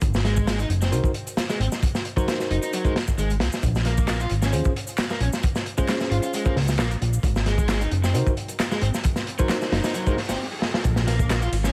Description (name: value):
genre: breakbeat, breaks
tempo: 133 BPM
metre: 4/4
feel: swing 53% on 16ths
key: unclear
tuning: A4 = 440 Hz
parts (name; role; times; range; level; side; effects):
- fat analog bass; bass; 0.0-11.7 s; Gb1 to Eb2; -25 LUFS; equal; none
- crunchy breakbeat drum kit; drums; 0.0-11.7 s; hi-hat, kick drum, snare drum; -27 LUFS; equal; none
- punchy analog drum machine; drums; 0.0-11.7 s; handclaps, ride cymbal, shaker; -38 LUFS; equal; overdrive
- raw garage guitar; riff; 0.2-11.7 s; Gb3 to F4; -33 LUFS; equal; overdrive, tube saturation, tape echo
- bell-like tine electric piano; stabs; 0.9-10.2 s; Db4 to C5; -32 LUFS; equal; tape echo
- riser; sound effects; 8.4-10.8 s; none; -41 LUFS; equal; none
room: small room ambience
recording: vinyl crackle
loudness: -23 LUFS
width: mono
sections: 0.0-10.8 A section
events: drum fill 10.6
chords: 0.0 Ab7; 3.6 Bbm7; 7.2 Ab7; 10.8 Bb7(no3)